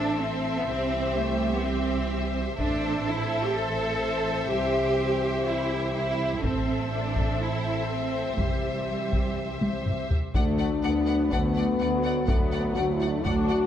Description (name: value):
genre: cinematic, epic orchestral film score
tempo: 125 BPM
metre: 4/4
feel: straight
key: unclear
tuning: A4 = 443 Hz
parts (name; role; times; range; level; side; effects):
- warm symphonic violin section; melody; 0.0-13.6 s; E5 to F#5; -36 LUFS; left 3 dB; none
- rich symphonic violin section; second line; 0.0-13.6 s; C5 to F#5; -37 LUFS; left 3 dB; none
- warm symphonic viola section; accompaniment; 0.0-13.7 s; F#3 to A4; -35 LUFS; equal; none
- bright trombone section; sustained chords; 0.0-13.7 s; D3 to C4; -36 LUFS; right 3 dB; none
- warm French horn section; sustained chords; 0.0-13.7 s; A3 to E5; -31 LUFS; left 5 dB; none
- rich chamber double bass section; bass; 0.0-13.7 s; A1 to D2; -32 LUFS; right 2 dB; none
- warm symphonic cello section; bass; 0.0-13.7 s; D2 to A4; -30 LUFS; right 2 dB; none
- taiko ensemble; drums; 2.6-3.5, 6.4-13.7 s; none; -28 LUFS; equal; none
- clear tuba; bass; 10.3-13.7 s; D2; -33 LUFS; right 3 dB; none
room: moderate scoring stage reverb, RT60 1.9 s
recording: none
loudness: -24 LUFS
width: side -10 dB against mid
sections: 0.0-10.3 A section; 10.3-13.7 B section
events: drum fill 9.6-10.3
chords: 0.0 Am; 0.7 C; 2.6 Am; 4.5 C; 6.4 Am; 8.4 C; 10.3 D